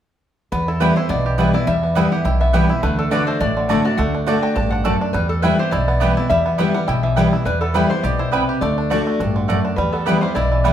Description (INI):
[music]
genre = bluegrass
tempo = 207 BPM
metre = 4/4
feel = swing 54% on 8ths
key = E minor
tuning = A4 = 442 Hz
[part]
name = bluegrass banjo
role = melody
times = 0.5-10.7 s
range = D3 to G4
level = -25 LUFS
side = right 4 dB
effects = none
[part]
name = lap resonator guitar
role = melody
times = 0.5-10.7 s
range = A4 to A5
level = -24 LUFS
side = left 2 dB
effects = none
[part]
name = picked steel-string acoustic guitar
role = accompaniment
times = 0.5-10.7 s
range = E2 to F#4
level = -19 LUFS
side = left 2 dB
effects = none
[part]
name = upright bass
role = bass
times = 0.5-10.7 s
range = A1 to E2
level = -23 LUFS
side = right 1 dB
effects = none
[part]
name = mandolin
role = stabs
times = 0.8-10.7 s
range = A3 to A5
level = -24 LUFS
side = right 4 dB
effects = none
[sound]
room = wet large studio reverb, RT60 1.0 s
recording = band playing live in one room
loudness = -16 LUFS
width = side -10 dB against mid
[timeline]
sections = 0.5-10.7 A section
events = none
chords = 0.5 Em; 2.8 D; 5.1 Em; 8.6 D; 9.8 Em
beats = | 0.52 0.81 1.10 1.39 | 1.67 1.96 2.25 2.54 | 2.83 3.12 3.41 3.70 | 3.99 4.28 4.57 4.85 | 5.14 5.43 5.72 6.01 | 6.30 6.59 6.88 7.17 | 7.46 7.75 8.04 8.33 | 8.62 8.91 9.20 9.49 | 9.78 10.07 10.36 10.65